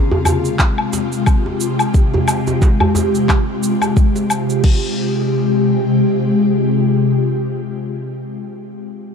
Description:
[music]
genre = organic downtempo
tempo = 89 BPM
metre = 4/4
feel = swing 57% on 16ths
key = F minor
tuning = A4 = 440 Hz
[part]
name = ethereal airy pad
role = sustained chords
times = 0.0-8.1 s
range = C3 to G4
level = -16 LUFS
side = left 2 dB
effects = ensemble chorus, built-in reverb, phaser, sidechain pumping
[part]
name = bronze singing bowl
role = texture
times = 0.0-4.7 s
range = C4 to C6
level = -35 LUFS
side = left 1 dB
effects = none
[part]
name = djembe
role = percussion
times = 0.1-4.3 s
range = none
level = -20 LUFS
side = right 2 dB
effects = none
[part]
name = organic electronic drum kit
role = drums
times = 0.3-4.8 s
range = cabasa, crash cymbal, handclaps, woodblock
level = -22 LUFS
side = left 1 dB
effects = none
[part]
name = electronic kick drum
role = drums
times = 0.6-4.8 s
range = none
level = -13 LUFS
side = equal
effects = none
[sound]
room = light reverb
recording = dark, warm production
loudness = -14 LUFS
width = side -6 dB against mid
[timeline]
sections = 0.0-4.6 A section; 4.6-7.3 B section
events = none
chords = 0.0 Fmadd9

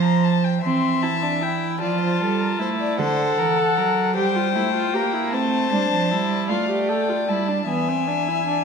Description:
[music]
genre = classical, baroque-style fugue for string quartet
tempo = 51 BPM (dotted quarters)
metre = 6/8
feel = straight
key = F major, A minor from 5.3 s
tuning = A4 = 440 Hz
[part]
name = dark violin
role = melody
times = 0.0-8.6 s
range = F5 to C6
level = -25 LUFS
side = left 10 dB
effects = none
[part]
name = rich violin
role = second line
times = 0.0-8.6 s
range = A4 to E5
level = -27 LUFS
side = left 5 dB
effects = none
[part]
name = rich cello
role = bass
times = 0.0-8.6 s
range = D3 to Bb3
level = -24 LUFS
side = right 6 dB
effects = none
[part]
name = warm viola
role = accompaniment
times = 0.6-8.6 s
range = B3 to A4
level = -24 LUFS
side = right 2 dB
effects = none
[sound]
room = wet recital hall reverb, RT60 1.6 s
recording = minimal, uncompressed stereo recording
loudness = -19 LUFS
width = side -6 dB against mid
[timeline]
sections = 0.6-8.6 A section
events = none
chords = 0.0 F; 0.6 C/E; 1.8 F; 3.0 D7; 4.2 Gm; 5.3 Am; 6.5 Dm/A; 7.7 E

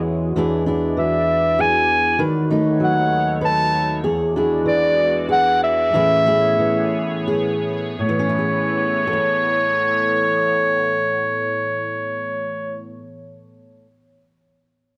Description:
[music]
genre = acoustic folk-pop ballad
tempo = 82-98 BPM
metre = 3/4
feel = straight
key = A major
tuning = A4 = 440 Hz
[part]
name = fingerpicked steel-string acoustic guitar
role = accompaniment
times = 0.0-13.9 s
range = E2 to C#5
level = -24 LUFS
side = equal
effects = none
[part]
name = sweeping resonant pad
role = sustained chords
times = 0.0-12.9 s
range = D#2 to D5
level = -30 LUFS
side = equal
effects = chorus
[part]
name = clear clarinet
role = melody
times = 1.0-13.0 s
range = C#5 to A5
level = -20 LUFS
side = equal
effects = none
[sound]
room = moderate booth ambience, RT60 0.2 s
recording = none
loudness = -19 LUFS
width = mono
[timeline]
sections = 0.0-8.0 A section; 8.0-12.4 B section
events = slowing down 4.0-8.0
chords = 0.4 E7; 2.2 B7/D#; 4.0 E7; 5.9 Amaj7

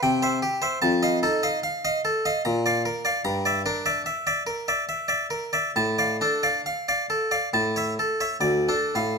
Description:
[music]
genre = classical, baroque-style suite movement for harpsichord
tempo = 67-76 BPM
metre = 3/4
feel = rubato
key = D minor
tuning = A4 = 440 Hz
[part]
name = harpsichord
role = solo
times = 0.0-9.2 s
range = D2 to Bb5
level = -22 LUFS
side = equal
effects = none
[sound]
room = light reverb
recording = close, detailed microphones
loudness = -22 LUFS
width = side -4 dB against mid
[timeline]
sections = 0.0-8.4 A section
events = none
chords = 0.0 C; 0.8 F7; 2.5 Bb; 3.3 Em7b5/G; 5.8 Dm/A; 7.5 A; 8.4 Dm

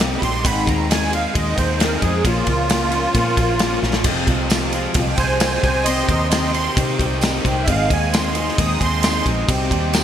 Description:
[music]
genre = folk rock and heartland rock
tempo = 133 BPM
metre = 4/4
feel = straight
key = unclear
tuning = A4 = 440 Hz
[part]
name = picked twelve-string acoustic guitar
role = accompaniment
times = 0.0-10.0 s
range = F2 to Ab4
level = -25 LUFS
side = left 3 dB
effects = analog chorus
[part]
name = raw garage guitar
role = riff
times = 0.0-10.0 s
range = F2 to Eb4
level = -25 LUFS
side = equal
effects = overdrive, ensemble chorus
[part]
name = vintage muted fingered electric bass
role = bass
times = 0.0-10.0 s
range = F1 to C3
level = -23 LUFS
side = equal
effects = none
[part]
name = loose indie drum kit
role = drums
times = 0.0-10.0 s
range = crash cymbal, kick drum, ride cymbal, snare drum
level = -20 LUFS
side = equal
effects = gated reverb
[part]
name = musette accordion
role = melody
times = 0.2-9.3 s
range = F4 to Eb6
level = -23 LUFS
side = right 2 dB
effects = none
[part]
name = tonewheel organ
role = sustained chords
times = 4.0-10.0 s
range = F3 to G5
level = -32 LUFS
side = right 1 dB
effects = none
[part]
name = tambourine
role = percussion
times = 4.5-10.0 s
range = none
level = -32 LUFS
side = right 5 dB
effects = none
[sound]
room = moderate lush hall reverb, RT60 1.8 s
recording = bright 1980s-style digital production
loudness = -16 LUFS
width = side -10 dB against mid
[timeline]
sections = 0.0-10.0 A section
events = accordion solo 0.0-10.0; drum fill 3.8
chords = 0.4 Ab; 2.2 Bbm; 4.1 Fm; 5.6 Cm; 7.7 Ab; 9.5 Cm

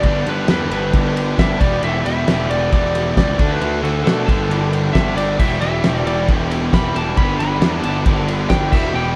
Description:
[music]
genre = classic rock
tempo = 135 BPM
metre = 4/4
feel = straight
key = unclear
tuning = A4 = 440 Hz
[part]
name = lightly driven lead guitar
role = melody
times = 0.0-9.2 s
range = A4 to B5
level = -25 LUFS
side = equal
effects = none
[part]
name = crunchy overdriven guitar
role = riff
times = 0.0-9.2 s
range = E2 to D4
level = -28 LUFS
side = equal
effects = none
[part]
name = distorted electric guitar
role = riff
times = 0.0-9.2 s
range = E2 to G4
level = -27 LUFS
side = equal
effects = overdrive
[part]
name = distorted electric guitar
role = riff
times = 0.0-9.2 s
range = E2 to G4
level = -31 LUFS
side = equal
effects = none
[part]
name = fuzz picked electric bass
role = bass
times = 0.0-9.1 s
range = E1 to B2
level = -24 LUFS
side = equal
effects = overdrive
[part]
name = cloth-damped thuddy drum kit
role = drums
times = 0.0-8.8 s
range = crash cymbal, kick drum, ride cymbal, snare drum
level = -21 LUFS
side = equal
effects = none
[sound]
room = moderate stone room reverb, RT60 1.1 s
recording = band playing live in one room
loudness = -17 LUFS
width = mono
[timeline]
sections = 0.0-9.2 A section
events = none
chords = 0.0 G; 1.6 Em; 3.4 D; 4.3 G; 5.4 Em; 7.2 G

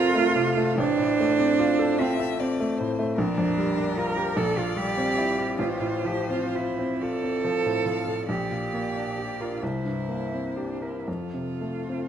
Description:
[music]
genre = classical, slow romantic movement for piano trio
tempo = 35-52 BPM (dotted quarters)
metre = 6/8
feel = rubato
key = F major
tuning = A4 = 441 Hz
[part]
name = warm violin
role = melody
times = 0.0-12.1 s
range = A4 to F5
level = -34 LUFS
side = left 9 dB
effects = none
[part]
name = rich cello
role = second line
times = 0.0-12.1 s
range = C4 to Bb4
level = -26 LUFS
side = right 5 dB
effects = none
[part]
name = clear baby grand piano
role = accompaniment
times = 0.0-12.1 s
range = A1 to Bb4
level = -27 LUFS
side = left 1 dB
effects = none
[sound]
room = moderate scoring stage reverb, RT60 1.8 s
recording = close, detailed microphones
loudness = -23 LUFS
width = side -9 dB against mid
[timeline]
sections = 0.0-12.1 A section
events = none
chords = 0.0 F; 0.8 F/A; 3.2 Gm7/Bb; 4.4 C7/Bb; 5.6 F/A; 8.3 Gm/Bb; 9.6 C7; 11.1 F

